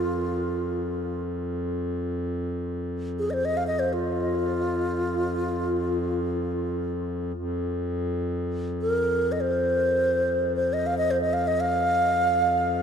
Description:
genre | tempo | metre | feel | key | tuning
world meditative, free-time meditation music | free time | none | none | unclear | A4 = 442 Hz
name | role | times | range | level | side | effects
alto flute | melody | 0.0-12.8 s | F4 to F5 | -25 LUFS | equal | tape echo
hand-pumped harmonium | drone | 0.0-12.8 s | F2 | -28 LUFS | equal | stereo widening
room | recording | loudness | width
wet cathedral reverb, RT60 6.7 s | dark, warm production | -24 LUFS | side -7 dB against mid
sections
0.0-7.3 A section; 7.3-12.8 A section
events
none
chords
none

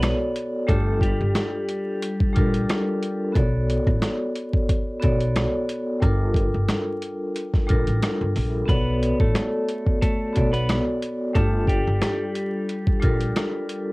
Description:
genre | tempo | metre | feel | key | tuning
hip hop, boom-bap hip-hop | 90 BPM | 4/4 | swing 55% on 16ths | unclear | A4 = 440 Hz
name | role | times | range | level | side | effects
semi-hollow electric guitar | melody | 0.0-3.3, 8.7-13.9 s | G3 to B4 | -28 LUFS | equal | warbly pitch drift, high-pass filter, low-pass filter, cassette tape
vibraphone with medium hard mallets | accompaniment | 0.0-13.9 s | G3 to D5 | -26 LUFS | equal | cassette tape, high-pass filter, low-pass filter
upright bass | bass | 0.0-13.3 s | G1 to B1 | -24 LUFS | equal | transformer saturation
boom bap sampler-style drum kit | drums | 0.0-13.9 s | hi-hat, kick drum, rim click, snare drum | -23 LUFS | equal | cassette tape
room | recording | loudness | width
light reverb | home recording on cassette, vinyl crackle | -20 LUFS | side -23 dB against mid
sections
0.0-13.9 A section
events
none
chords
0.0 Bm7; 0.7 Gm7; 3.4 Bm7; 6.0 Gm7; 8.7 Bm7; 11.4 Gm7

